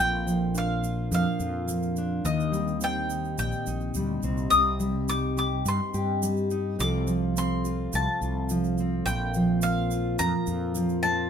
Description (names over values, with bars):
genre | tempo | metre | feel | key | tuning
acoustic folk duo or small band | 106 BPM | 4/4 | straight | unclear | A4 = 440 Hz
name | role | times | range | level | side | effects
bowl-back mandolin | melody | 0.0-11.3 s | Eb5 to Eb6 | -28 LUFS | left 1 dB | none
fingerpicked steel-string acoustic guitar | accompaniment | 0.0-11.3 s | G2 to A4 | -28 LUFS | equal | none
glass harmonica | sustained chords | 0.0-11.3 s | C4 to F5 | -36 LUFS | left 2 dB | none
mellow fretless electric bass | bass | 0.0-11.3 s | Bb1 to G2 | -30 LUFS | equal | none
tube shaker | percussion | 0.3-11.2 s | none | -39 LUFS | right 5 dB | none
room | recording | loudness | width
light reverb | minimal, uncompressed stereo recording | -24 LUFS | side -8 dB against mid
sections
0.0-11.3 A section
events
none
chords
0.0 Bb; 2.3 Eb6; 4.5 Cm; 6.8 F/C; 9.1 Bbsus2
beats
0.56 1.12 1.69 | 2.26 2.83 3.40 3.96 | 4.53 5.10 5.66 6.23 | 6.80 7.36 7.93 8.49 | 9.06 9.62 10.19 10.76